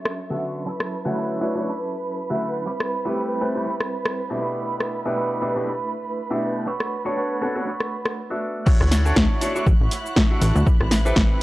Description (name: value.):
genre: filtered disco house.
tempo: 120 BPM.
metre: 4/4.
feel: swing 56% on 16ths.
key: D major.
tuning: A4 = 440 Hz.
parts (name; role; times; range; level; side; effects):
rich studio violin section; sustained chords; 0.0-11.4 s; E4 to F#6; -30 LUFS; right 2 dB; sidechain pumping, low-pass filter.
electric guitar with an envelope filter; riff; 0.0-11.4 s; F#3 to C#5; -31 LUFS; right 3 dB; tremolo, sidechain pumping, low-pass filter.
punchy analog drum machine; drums; 0.1-11.3 s; crash cymbal, hi-hat, rim click, shaker, snare drum; -23 LUFS; equal; low-pass filter on snare, sidechain pumping on cymbals, low-pass filter on cymbals, sidechain pumping on perc, low-pass filter on perc, sidechain pumping on hats, low-pass filter on hats.
bright grand piano; accompaniment; 0.3-11.4 s; B2 to E5; -26 LUFS; left 1 dB; phaser, sidechain pumping, low-pass filter.
plucky analog bass; bass; 8.7-11.3 s; A1 to D2; -20 LUFS; equal; tube saturation, sidechain pumping, low-pass filter.
electronic kick drum; drums; 8.7-11.3 s; none; -18 LUFS; equal; none.
room: digital ambience.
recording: dry, gritty hardware recording, cassette tape.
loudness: -20 LUFS.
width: side -18 dB against mid.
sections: 0.0-8.7 A section; 8.7-11.4 B section.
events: filter sweep 0.0-8.7; break 8.2-8.7; drop 8.7-11.4.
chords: 0.0 Dmaj9; 2.7 Am9; 4.4 G69/B; 6.7 Bm9; 8.7 Dmaj9; 10.7 Am9.